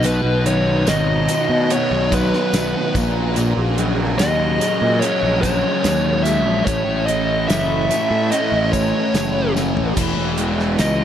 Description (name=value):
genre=psychedelic rock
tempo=73 BPM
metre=4/4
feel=straight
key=unclear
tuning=A4 = 440 Hz
part: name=fuzz lead guitar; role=melody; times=0.0-11.0 s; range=B4 to E5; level=-20 LUFS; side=left 1 dB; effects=distortion, tape echo
part: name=phased string machine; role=sustained chords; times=0.0-11.0 s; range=B3 to C#5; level=-29 LUFS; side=right 2 dB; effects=ensemble chorus, phaser
part: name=thick fuzz guitar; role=riff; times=0.0-11.0 s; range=A2 to C#4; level=-21 LUFS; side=equal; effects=distortion, phaser, tape echo
part: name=fuzz fingered electric bass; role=bass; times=0.0-11.0 s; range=E1 to B2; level=-22 LUFS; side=equal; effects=overdrive
part: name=damped 70s drum kit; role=drums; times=0.0-11.0 s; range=crash cymbal, hi-hat, kick drum, snare drum, toms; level=-24 LUFS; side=equal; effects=tape echo
part: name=tambourine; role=percussion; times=0.0-11.0 s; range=none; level=-35 LUFS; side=left 8 dB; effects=none
room=light reverb, small room ambience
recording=echo-heavy mix, lossy compression artefacts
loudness=-16 LUFS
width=side -10 dB against mid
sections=0.0-11.0 A section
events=drum fill 9.6-10.0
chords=0.0 B; 3.0 F#add9/A#; 6.7 A; 10.0 E